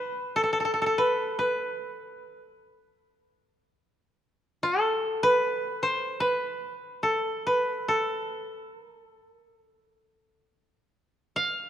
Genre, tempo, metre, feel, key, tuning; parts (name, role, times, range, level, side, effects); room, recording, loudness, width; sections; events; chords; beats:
japanese traditional, Japanese chamber music; 65-76 BPM; 4/4; rubato; A hirajoshi; A4 = 442 Hz
koto; solo; 0.0-11.7 s; A4 to F5; -25 LUFS; equal
moderate concert hall reverb, RT60 2.4 s; minimal, uncompressed stereo recording; -25 LUFS; side -10 dB against mid
0.0-11.4 A section
0.56 | 1.38 2.21 3.03 3.85 | 4.65 5.45 6.25 7.06 | 7.89 8.73 9.59 10.49 | 11.38